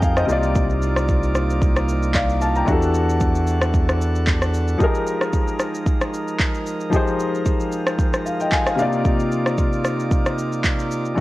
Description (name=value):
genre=amapiano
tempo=113 BPM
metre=4/4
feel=swing 55% on 16ths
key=unclear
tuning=A4 = 440 Hz
part: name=warm grand piano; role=accompaniment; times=0.0-11.2 s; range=C3 to Bb5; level=-23 LUFS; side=left 2 dB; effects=none
part: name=chamber organ, sparkling flutes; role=sustained chords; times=0.0-11.2 s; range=C3 to G5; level=-25 LUFS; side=right 1 dB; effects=none
part: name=saturated sub bass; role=bass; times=0.0-4.8 s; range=C2 to F2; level=-21 LUFS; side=equal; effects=none
part: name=deep house drum kit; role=drums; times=0.0-11.2 s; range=handclaps, kick drum, rim click, shaker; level=-21 LUFS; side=equal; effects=vintage 12-bit sampler grit
room=digital ambience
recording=worn, warbling old tape, cassette tape, warbly pitch drift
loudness=-18 LUFS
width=side -18 dB against mid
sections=0.0-11.2 A section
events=grand piano fill 8.3-9.1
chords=0.3 Cm11; 2.7 Em11; 4.8 Fm11; 8.8 Cm11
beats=0.02 | 0.56 1.08 1.62 2.15 | 2.68 3.21 3.74 4.27 | 4.80 5.33 5.86 6.39 | 6.93 7.46 7.99 8.52 | 9.05 9.58 10.11 10.64 | 11.17